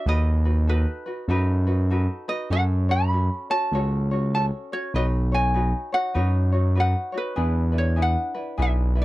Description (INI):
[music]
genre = Hawaiian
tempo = 99 BPM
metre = 4/4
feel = swing 62% on 8ths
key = unclear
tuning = A4 = 438 Hz
[part]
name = ukulele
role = melody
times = 0.0-9.0 s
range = B4 to B5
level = -26 LUFS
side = right 1 dB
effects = none
[part]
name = tenor ukulele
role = accompaniment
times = 0.0-9.0 s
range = C#4 to C#5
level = -31 LUFS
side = left 2 dB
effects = none
[part]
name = smooth gliding synth bass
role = bass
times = 0.1-9.0 s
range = B1 to F#2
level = -21 LUFS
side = equal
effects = none
[sound]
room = little or no reverb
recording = dry, close 1970s-style studio recording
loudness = -21 LUFS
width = side -17 dB against mid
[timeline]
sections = 0.0-9.0 A section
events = none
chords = 0.1 B7/D#; 2.5 F#m; 4.9 Badd9; 7.4 E7